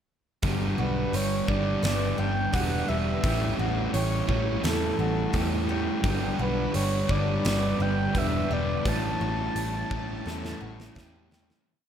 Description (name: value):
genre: rock, shoegaze and dream pop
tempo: 86 BPM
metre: 4/4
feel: straight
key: A mixolydian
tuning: A4 = 440 Hz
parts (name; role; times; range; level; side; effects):
- picked twelve-string acoustic guitar; arpeggios; 0.4-11.7 s; F#4 to B4; -38 LUFS; left 5 dB; lush chorus, slapback echo
- overdriven semi-hollow guitar; riff; 0.4-11.7 s; G2 to E4; -31 LUFS; right 11 dB; reverse reverb
- thick fuzz guitar; riff; 0.4-11.7 s; G2 to A3; -31 LUFS; left 8 dB; distortion, wide subtle chorus
- vintage muted picked electric bass; bass; 0.4-11.5 s; E1 to E2; -30 LUFS; equal; none
- huge arena drum kit; drums; 0.4-11.7 s; hi-hat, kick drum, snare drum; -32 LUFS; equal; none
- breathy flute-like synth lead; melody; 0.8-11.0 s; A4 to A5; -32 LUFS; right 1 dB; chorus, slapback echo
- phased string machine; sustained chords; 6.0-11.7 s; D4 to B5; -39 LUFS; left 2 dB; ensemble chorus, phaser
room: light reverb, studio ambience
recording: none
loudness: -24 LUFS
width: side -9 dB against mid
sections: 0.4-11.7 verse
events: fade-out 8.9-11.7; drum fill 10.3-11.7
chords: 0.4 G; 3.2 A7; 6.0 G; 8.9 A7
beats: | 0.43 1.14 1.84 2.54 | 3.24 3.94 4.64 5.34 | 6.04 6.75 7.45 8.15 | 8.85 9.56 10.26 10.97